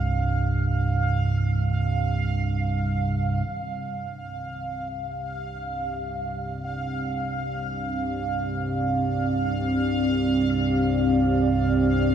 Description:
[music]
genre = dark ambient drone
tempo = free time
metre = none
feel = none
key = C minor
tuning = A4 = 444 Hz
[part]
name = analog drone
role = drone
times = 0.0-12.1 s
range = C2 to G2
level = -26 LUFS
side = right 1 dB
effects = chorus
[part]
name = bubbling stepped-filter texture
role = texture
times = 0.0-12.1 s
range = F5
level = -30 LUFS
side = right 3 dB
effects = chorus, built-in reverb
[part]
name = dark analog pad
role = sustained chords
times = 4.4-12.1 s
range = C4 to D5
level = -25 LUFS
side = equal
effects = chorus
[part]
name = gamelan-type bossed gongs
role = arpeggios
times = 3.5-9.8 s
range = Eb3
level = -49 LUFS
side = left 2 dB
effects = none
[sound]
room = wet cathedral reverb, RT60 5.1 s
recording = in a vast, echoing space, studio reverb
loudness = -23 LUFS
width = side -9 dB against mid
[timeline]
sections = 0.0-3.5 A section; 3.5-12.1 B section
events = fade-in on synth drone 3.5-12.1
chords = 0.0 C5; 3.5 Cmadd9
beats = free time

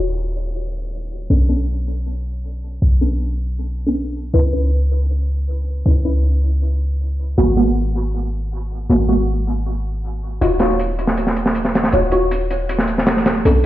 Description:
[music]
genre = drum and bass, jungle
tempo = 158 BPM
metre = 4/4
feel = straight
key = Eb minor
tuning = A4 = 440 Hz
[part]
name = deep mellow chord stab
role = stabs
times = 0.0-13.5 s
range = Ab3 to Db5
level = -20 LUFS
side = equal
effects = chorus, phaser, dub echo
[part]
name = warm 808-style bass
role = bass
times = 0.0-13.7 s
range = Eb1 to Db2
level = -18 LUFS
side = equal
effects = none
[part]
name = downlifter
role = sound effects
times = 0.0-1.3 s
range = none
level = -40 LUFS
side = left 1 dB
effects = none
[part]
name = crunchy breakbeat drum kit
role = drums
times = 10.4-13.5 s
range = hi-hat, snare drum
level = -18 LUFS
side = right 1 dB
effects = none
[sound]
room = light reverb, small room ambience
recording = played on a big sound system in a bare room, stone room reverb, low-pass filter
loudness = -16 LUFS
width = side -14 dB against mid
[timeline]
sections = 0.0-13.7 A section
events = filter sweep on synth stab 0.0-13.7; filter sweep 0.0-13.7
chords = 0.0 N.C.; 1.3 Bm9; 4.3 Dbm9; 7.4 Abm9; 10.4 Ebm9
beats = 0.16 0.54 0.92 | 1.30 1.68 2.06 2.44 | 2.82 3.20 3.58 3.96 | 4.34 4.72 5.10 5.48 | 5.86 6.24 6.62 7.00 | 7.38 7.76 8.14 8.52 | 8.90 9.28 9.65 10.04 | 10.41 10.79 11.17 11.55 | 11.93 12.31 12.69 13.07 | 13.45

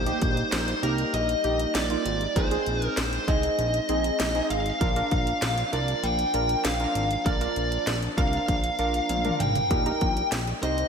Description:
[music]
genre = synth-pop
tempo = 98 BPM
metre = 4/4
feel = straight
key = Bb mixolydian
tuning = A4 = 440 Hz
[part]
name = fuzz lead guitar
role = melody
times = 0.0-10.9 s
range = Bb4 to G5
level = -27 LUFS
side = left 1 dB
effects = distortion
[part]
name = mellow French horn section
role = sustained chords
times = 0.0-10.9 s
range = F3 to Eb4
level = -35 LUFS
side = left 1 dB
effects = none
[part]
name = fat analog bass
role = bass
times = 0.0-10.8 s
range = Ab1 to C2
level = -29 LUFS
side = equal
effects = none
[part]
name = warm analog keys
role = accompaniment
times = 0.1-10.9 s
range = Bb3 to C5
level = -31 LUFS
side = right 4 dB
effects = chorus
[part]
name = house drum kit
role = drums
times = 0.1-10.9 s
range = hi-hat, kick drum, snare drum, toms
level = -29 LUFS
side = equal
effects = gated reverb
[sound]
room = moderate lush hall reverb, RT60 2.5 s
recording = bright 1980s-style digital production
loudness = -23 LUFS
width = side -6 dB against mid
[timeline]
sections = 0.0-10.9 A section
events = drum fill 9.1-9.7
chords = 0.0 Eb/Bb; 2.4 Ab/Bb; 4.8 Bb; 9.7 Eb/Bb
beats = 0.52 1.14 1.75 | 2.36 2.97 3.59 4.20 | 4.81 5.42 6.03 6.65 | 7.26 7.87 8.48 9.10 | 9.71 10.32

